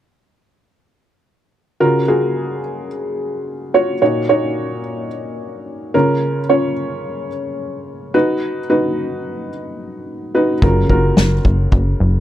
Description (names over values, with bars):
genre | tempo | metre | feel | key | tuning
piano-driven pop | 109 BPM | 4/4 | straight | F# major | A4 = 442 Hz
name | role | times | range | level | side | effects
dark upright piano | accompaniment | 1.8-12.2 s | A#2 to C#5 | -17 LUFS | equal | none
plucky analog bass | bass | 10.6-12.2 s | F#1 | -15 LUFS | equal | none
unplugged drum kit | drums | 10.6-11.8 s | kick drum, snare drum | -14 LUFS | equal | none
room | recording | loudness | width
light reverb | dry, close 1970s-style studio recording | -15 LUFS | side -12 dB against mid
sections
1.8-12.2 A section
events
none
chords
1.8 F#maj7; 4.0 D#m7; 5.9 A#m/C#; 8.1 B; 10.6 F#maj7